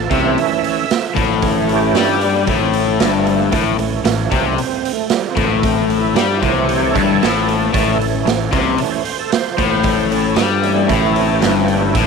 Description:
blues rock power trio and southern rock; 114 BPM; 4/4; straight; A mixolydian; A4 = 439 Hz
overdriven tonewheel organ; sustained chords; 0.0-12.1 s; E3 to E5; -20 LUFS; right 10 dB; chorus vibrato, slow rotary speaker
overdriven semi-hollow guitar; riff; 0.0-12.1 s; G2 to G3; -16 LUFS; left 11 dB
growling fingered electric bass; bass; 0.0-12.1 s; G1 to G2; -23 LUFS; right 1 dB; overdrive
raw garage drum kit; drums; 0.1-12.1 s; hi-hat, kick drum, snare drum; -20 LUFS; right 6 dB
moderate spring reverb, RT60 1.7 s; 1960s-style stereo with parts hard left and right; -13 LUFS; side -5 dB against mid
0.0-12.1 A section
tonewheel organ solo 0.0-12.1
0.0 A
0.37 0.90 | 1.43 1.95 2.48 3.01 | 3.53 4.06 4.59 5.11 | 5.64 6.17 6.69 7.22 | 7.74 8.27 8.80 9.32 | 9.85 10.38 10.90 11.43 | 11.96

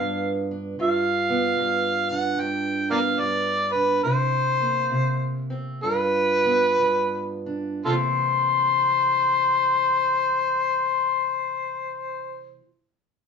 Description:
acoustic country blues, solo or duo; 55-77 BPM; 4/4; swing 64% on 8ths; A4 = 439 Hz
overdriven harmonica; melody; 0.0-12.5 s; F4 to G5; -21 LUFS; left 2 dB
fingerpicked steel-string acoustic guitar; accompaniment; 0.0-12.7 s; G2 to F4; -27 LUFS; right 2 dB
wet studio reverb, RT60 0.6 s; band playing live in one room, nothing above 8.0 kHz; -20 LUFS; side -6 dB against mid
0.0-7.9 A section; 7.9-12.2 B section
slowing down 0.8-7.9
0.0 G7; 4.0 C7; 5.8 G7; 7.9 C7
| 0.78 1.56 2.36 3.18 | 4.03 4.91 5.83 6.81 | 7.86 8.94 10.02 11.10

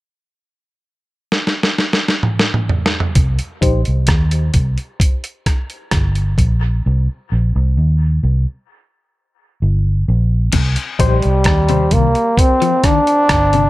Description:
dub reggae; 65 BPM; 4/4; straight; C minor; A4 = 439 Hz
dusty soul sampler-style drum kit; drums; 1.3-13.7 s; crash cymbal, hi-hat, kick drum, rim click, snare drum, toms; -16 LUFS; equal
vintage muted fingered electric bass; bass; 3.2-13.7 s; G1 to Eb2; -14 LUFS; equal
barky reed electric piano; stabs; 3.6-3.8, 11.0-11.2 s; Eb4 to C5; -25 LUFS; left 4 dB; overdrive, fast tremolo, high-pass filter, low-pass filter, dub echo
electric guitar at the edge of break-up; arpeggios; 10.5-13.7 s; Bb2 to F3; -22 LUFS; left 8 dB; tremolo
breathy trombone; melody; 11.0-13.7 s; G3 to D4; -14 LUFS; equal; dub echo
light reverb; -13 LUFS; side -18 dB against mid
0.0-3.2 A section; 3.2-10.5 B section; 10.5-13.7 C section
drum fill 1.3-3.2; part muted 6.8-10.5
0.0 N.C.; 3.2 Cm
0.38 1.31 2.23 | 3.15 4.08 5.00 5.92 | 6.85 7.77 8.69 9.61 | 10.53 11.45 12.38 13.29

